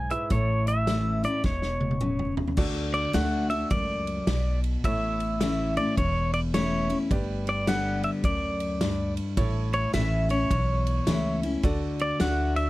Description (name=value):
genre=honky-tonk and classic country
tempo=106 BPM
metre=4/4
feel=swing 64% on 8ths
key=D major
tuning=A4 = 440 Hz
part: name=pedal steel guitar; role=melody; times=0.0-12.7 s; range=C#5 to G#5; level=-29 LUFS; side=equal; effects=none
part: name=bright concert grand piano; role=accompaniment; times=0.0-12.7 s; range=E4 to D5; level=-39 LUFS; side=right 4 dB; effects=none
part: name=picked steel-string acoustic guitar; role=accompaniment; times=0.0-12.7 s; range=E2 to G4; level=-29 LUFS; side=left 2 dB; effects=none
part: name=upright bass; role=bass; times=0.0-12.7 s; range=E1 to D2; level=-29 LUFS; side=equal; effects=none
part: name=natural country drum kit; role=drums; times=0.1-12.7 s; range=crash cymbal, hi-hat, kick drum, ride cymbal, snare drum, toms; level=-31 LUFS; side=equal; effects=none
room=little or no reverb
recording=vinyl crackle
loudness=-24 LUFS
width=side -18 dB against mid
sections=0.0-2.6 A section; 2.6-12.7 B section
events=drum fill 1.4-2.6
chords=0.3 A; 2.6 D; 4.8 A; 7.1 G; 9.4 A; 11.6 D